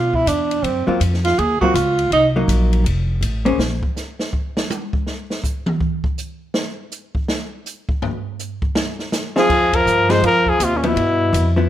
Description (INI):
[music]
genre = jazz, small-group swing and bop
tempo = 163 BPM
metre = 4/4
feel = swing 63% on 8ths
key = unclear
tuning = A4 = 440 Hz
[part]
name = breathy tenor saxophone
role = second line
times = 0.0-2.3, 9.4-11.6 s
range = Bb2 to Ab4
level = -19 LUFS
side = right 3 dB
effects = none
[part]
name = upright bass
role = bass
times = 0.0-3.8, 9.5-11.7 s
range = F1 to B2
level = -20 LUFS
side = equal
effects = none
[part]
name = open jazz drum kit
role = drums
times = 0.1-11.4 s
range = crash cymbal, hi-hat, kick drum, ride cymbal, snare drum, toms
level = -23 LUFS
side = equal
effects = none
[part]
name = vintage hollow-body jazz guitar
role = accompaniment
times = 0.9-3.6, 9.4-11.7 s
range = F3 to C5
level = -20 LUFS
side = left 2 dB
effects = none
[part]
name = breathy trumpet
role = melody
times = 9.4-11.6 s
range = Db4 to C5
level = -16 LUFS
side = left 3 dB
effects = none
[sound]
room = light reverb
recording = none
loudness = -16 LUFS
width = side -12 dB against mid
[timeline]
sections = 0.0-9.5 A section; 9.5-11.7 B section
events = tenor saxophone solo 0.0-9.5; drum solo 3.6-9.5; band accent 9.7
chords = 0.0 G13 (rootless); 0.6 Gbmaj7#11; 2.1 Cm7b5; 2.9 F; 3.6 N.C.; 8.8 Fm7; 11.0 G6